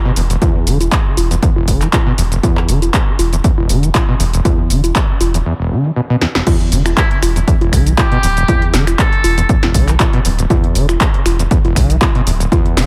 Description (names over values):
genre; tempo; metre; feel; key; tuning
acid house; 119 BPM; 4/4; swing 54% on 16ths; E minor; A4 = 440 Hz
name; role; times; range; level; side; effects
overdriven acid bass; riff; 0.1-12.9 s; E1 to E3; -20 LUFS; equal; tube saturation, subtle chorus, cassette tape, sidechain pumping, tape echo
saturated sub bass; bass; 0.2-12.9 s; D1 to B1; -18 LUFS; equal; tube saturation, sidechain pumping
punchy analog drum machine; drums; 0.2-12.9 s; congas, crash cymbal, finger snaps, handclaps, hi-hat, shaker, snare drum; -21 LUFS; equal; none
electronic kick drum; drums; 0.4-12.6 s; none; -16 LUFS; equal; none
trumpet with metal mute; melody; 7.0-9.5 s; E4 to A4; -23 LUFS; equal; tape echo
room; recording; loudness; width
light reverb; echo-heavy mix; -14 LUFS; mono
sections
0.0-6.5 A section; 6.5-12.9 B section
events
drum fill 6.2; drop 6.5-12.9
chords
0.0 E5